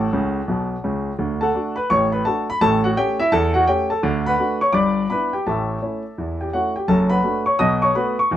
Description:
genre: jazz, stride piano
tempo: 169 BPM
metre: 4/4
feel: swing 63% on 8ths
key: D major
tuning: A4 = 440 Hz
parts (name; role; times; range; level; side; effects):
- clear grand piano; solo; 0.0-8.4 s; F#1 to D#6; -18 LUFS; equal; none
room: light reverb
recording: minimal, uncompressed stereo recording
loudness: -18 LUFS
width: side -11 dB against mid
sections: 0.0-1.2 A section; 1.2-8.4 B section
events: grand piano fill 0.1-1.2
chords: 0.5 A; 1.2 D; 2.6 A7; 4.0 D; 4.8 G6; 5.5 A; 6.9 D/F#; 7.6 B7

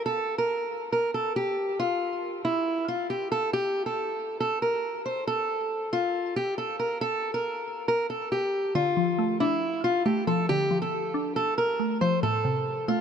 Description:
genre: hip hop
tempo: 138 BPM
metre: 4/4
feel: half-time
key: D minor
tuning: A4 = 440 Hz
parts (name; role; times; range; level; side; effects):
- fingerpicked steel-string acoustic guitar; melody; 0.1-13.0 s; E4 to C5; -26 LUFS; equal; low-pass filter, ping-pong delay
- glassy wavetable pluck; accompaniment; 8.8-13.0 s; A2 to D4; -27 LUFS; left 1 dB; chorus, low-pass filter
room: light reverb, studio ambience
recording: none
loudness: -25 LUFS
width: side -7 dB against mid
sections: 0.0-8.8 A section; 8.8-13.0 B section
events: none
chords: 0.0 N.C.; 8.8 Dm; 12.2 Am

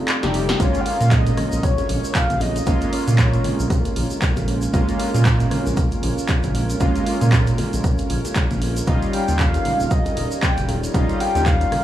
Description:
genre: deep house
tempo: 116 BPM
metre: 4/4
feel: swing 58% on 16ths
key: Bb dorian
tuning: A4 = 439 Hz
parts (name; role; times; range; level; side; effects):
- hollow soft pad; sustained chords; 0.0-11.8 s; G3 to Eb5; -31 LUFS; right 2 dB; chorus, sidechain pumping
- warm analog keys; stabs; 0.0-11.8 s; G3 to G4; -25 LUFS; right 1 dB; chorus, sidechain pumping, analog delay
- punchy analog drum machine; drums; 0.1-11.8 s; handclaps, hi-hat, rim click, snare drum; -27 LUFS; equal; none
- round analog bass; bass; 0.2-11.7 s; Eb1 to Bb2; -20 LUFS; right 1 dB; sidechain pumping
- congas and bongos; percussion; 0.2-11.8 s; none; -30 LUFS; left 2 dB; none
- breathy flute-like synth lead; melody; 0.6-3.6, 8.9-11.8 s; Db5 to G5; -25 LUFS; left 2 dB; analog chorus, analog delay
- electronic kick drum; drums; 0.6-11.6 s; none; -21 LUFS; equal; none
- tube shaker; percussion; 0.6-11.7 s; none; -36 LUFS; right 2 dB; none
room: little or no reverb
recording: small room reverb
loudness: -17 LUFS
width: side -12 dB against mid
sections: 0.0-11.8 A section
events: break 0.0-0.6; drum fill 0.2-0.6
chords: 0.0 F9; 0.6 Bbm7; 8.9 Eb9

